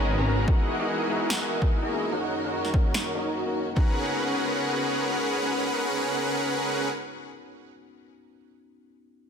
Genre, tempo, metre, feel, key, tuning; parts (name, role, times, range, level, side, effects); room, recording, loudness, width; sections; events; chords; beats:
future bass; 146 BPM; 4/4; swing 55% on 16ths, half-time; G# minor; A4 = 442 Hz
tine electric piano; accompaniment; 0.0-9.3 s; G#3 to A#5; -35 LUFS; left 4 dB; sidechain pumping, ping-pong delay
rich studio string section; sustained chords; 0.0-6.9 s; F#2 to A#4; -35 LUFS; equal; sidechain pumping
dense compressed supersaw; riff; 0.0-6.9 s; C#4 to A#5; -27 LUFS; equal; sidechain pumping, low-pass filter, ping-pong delay
wide detuned saw bass; bass; 0.0-0.5 s; G#1; -24 LUFS; equal; chorus, sidechain pumping
electronic kick drum; drums; 0.5-3.9 s; -23 LUFS; equal
electronic finger snaps and snare drum; drums; 1.3-3.0 s; -32 LUFS; equal
moderate lush hall reverb, RT60 2.0 s; -24 LUFS; side -7 dB against mid
0.0-3.8 A section; 3.8-7.1 B section
filter sweep on supersaw synth 0.0-3.8
0.5 Emaj9#11; 2.1 D#m7/F#; 3.8 G#m11
0.07 | 0.48 0.89 1.30 1.71 | 2.12 2.53 2.94 3.35 | 3.77 4.18 4.59 5.00 | 5.41 5.82 6.23 6.64